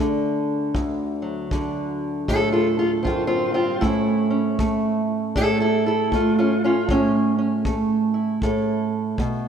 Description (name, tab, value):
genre	acoustic country blues, solo or duo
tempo	78 BPM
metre	4/4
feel	swing 62% on 8ths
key	D major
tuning	A4 = 436 Hz
part	fingerpicked steel-string acoustic guitar	melody	0.0-9.5 s	D2 to A4	-20 LUFS	right 1 dB	none
part	kick drum	drums	0.7-9.4 s	none	-28 LUFS	equal	none
room	moderate lush hall reverb, RT60 2.4 s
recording	rough home demo mix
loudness	-19 LUFS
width	side -7 dB against mid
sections	0.0-9.5 A section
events	none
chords	0.0 D; 3.8 A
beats	| 0.75 1.52 2.29 3.06 | 3.82 4.59 5.36 6.12 | 6.89 7.66 8.43 9.19